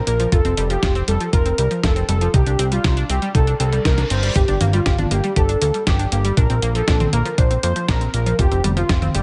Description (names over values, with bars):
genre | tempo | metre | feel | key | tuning
italo disco | 119 BPM | 4/4 | straight | unclear | A4 = 439 Hz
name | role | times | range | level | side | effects
analog synth brass | melody | 0.0-9.2 s | F4 to C5 | -25 LUFS | equal | chorus, tape echo
analog pluck | arpeggios | 0.0-9.2 s | F3 to G4 | -28 LUFS | equal | chorus, delay
fat analog bass | bass | 0.1-9.2 s | F1 to F2 | -22 LUFS | equal | tube saturation
clean 12-bit digital drum machine | drums | 0.1-9.2 s | hi-hat, snare drum, toms | -27 LUFS | equal | none
electronic kick drum | drums | 0.3-9.0 s | none | -21 LUFS | equal | none
reverse cymbal | sound effects | 3.6-4.4 s | none | -33 LUFS | equal | none
room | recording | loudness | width
light reverb, digital ambience | nothing above 10.9 kHz | -18 LUFS | mono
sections
0.0-9.2 A section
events
reverse cymbal 3.6-4.4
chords
0.3 Fsus2; 2.3 Cmadd9; 4.4 Gm; 6.4 Bbadd9; 8.4 Fsus2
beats
| 0.32 0.83 1.33 1.83 | 2.34 2.84 3.35 3.85 | 4.36 4.86 5.37 5.87 | 6.37 6.88 7.38 7.89 | 8.39 8.89